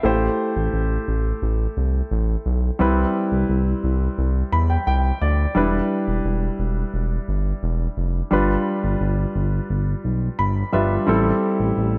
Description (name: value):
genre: 1980s-style pop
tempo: 87 BPM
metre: 4/4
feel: straight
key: unclear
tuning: A4 = 440 Hz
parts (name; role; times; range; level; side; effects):
- clear baby grand piano; accompaniment; 0.0-12.0 s; G3 to B5; -25 LUFS; equal; none
- smooth synth bass; bass; 0.0-12.0 s; E1 to E2; -23 LUFS; equal; none
room: light reverb, small room ambience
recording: none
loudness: -21 LUFS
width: mono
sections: 0.0-12.0 A section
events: grand piano fill 4.2-5.6, 10.0-11.1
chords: 0.0 Am7; 2.8 Cmaj7; 5.6 Em7; 8.3 G7; 11.1 Am7